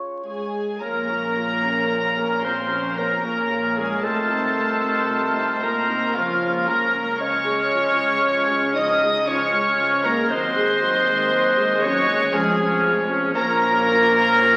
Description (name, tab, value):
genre	classical, slow romantic movement for symphony orchestra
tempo	57 BPM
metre	3/4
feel	rubato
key	Bb minor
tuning	A4 = 439 Hz
part	mellow clarinet	second line	0.0-14.6 s	F4 to Eb5	-26 LUFS	equal	none
part	mellow hollow large flute ensemble	second line	0.0-14.6 s	Db6 to Gb6	-28 LUFS	equal	none
part	mellow bassoon	accompaniment	0.0-14.6 s	Db3 to Ab3	-34 LUFS	equal	none
part	warm studio violin section	melody	0.3-14.6 s	F5 to Eb6	-28 LUFS	equal	none
part	warm studio violin section	second line	0.3-14.6 s	F4 to Eb5	-30 LUFS	equal	none
part	mellow French horn section	sustained chords	0.3-14.6 s	F3 to Eb4	-31 LUFS	equal	none
part	bright oboe	second line	0.8-14.6 s	Bb4 to Eb5	-31 LUFS	equal	none
part	warm studio viola section	accompaniment	0.8-14.6 s	F3 to Bb4	-32 LUFS	equal	none
part	dark studio double bass section	bass	0.8-14.6 s	F1 to Eb2	-39 LUFS	equal	none
part	warm studio cello section	bass	0.8-14.6 s	Eb2 to Db3	-39 LUFS	equal	none
room	wet scoring stage reverb, RT60 1.5 s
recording	very old 78 rpm record, vinyl crackle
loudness	-21 LUFS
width	mono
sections	0.8-14.6 A section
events	none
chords	0.0 Db; 0.8 Bbm; 4.0 F7/C; 6.2 Bbm/Db; 7.2 Db; 10.3 Ab7/Eb; 12.3 Db/F; 13.4 Bbm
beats	| 0.81 1.91 2.98 | 4.04 5.09 6.15 | 7.21 8.25 9.28 | 10.31 11.33 12.34 | 13.36 14.40